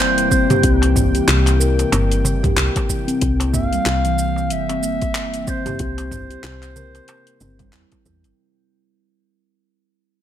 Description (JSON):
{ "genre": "organic downtempo", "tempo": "93 BPM", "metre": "4/4", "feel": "swing 58% on 16ths", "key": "unclear", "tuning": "A4 = 440 Hz", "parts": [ { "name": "dark clarinet", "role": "melody", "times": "0.0-8.0 s", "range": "C5 to F5", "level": "-23 LUFS", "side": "equal", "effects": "digital delay" }, { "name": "warm analog pad", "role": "sustained chords", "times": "0.0-8.4 s", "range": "C3 to G5", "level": "-27 LUFS", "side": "left 3 dB", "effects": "chorus, sidechain pumping" }, { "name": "steel tongue drum", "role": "arpeggios", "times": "0.0-7.9 s", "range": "E3 to Bb4", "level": "-22 LUFS", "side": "equal", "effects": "vintage 12-bit sampler grit, digital delay" }, { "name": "woody FM bass", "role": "bass", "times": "0.0-8.3 s", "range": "G1 to E2", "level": "-20 LUFS", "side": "equal", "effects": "sidechain pumping" }, { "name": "deep house drum kit", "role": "drums", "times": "0.2-8.4 s", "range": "handclaps, hi-hat, shaker, toms", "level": "-22 LUFS", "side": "equal", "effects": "overdrive" }, { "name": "electronic kick drum", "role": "drums", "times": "0.3-8.2 s", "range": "none", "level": "-22 LUFS", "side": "equal", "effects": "overdrive" }, { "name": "darbuka", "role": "percussion", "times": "0.5-8.4 s", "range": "none", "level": "-27 LUFS", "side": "right 2 dB", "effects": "none" } ], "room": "light reverb, digital ambience", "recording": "none", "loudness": "-16 LUFS", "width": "side -11 dB against mid", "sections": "0.0-8.4 A section", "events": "fade-out 1.5-8.4", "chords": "0.0 C7" }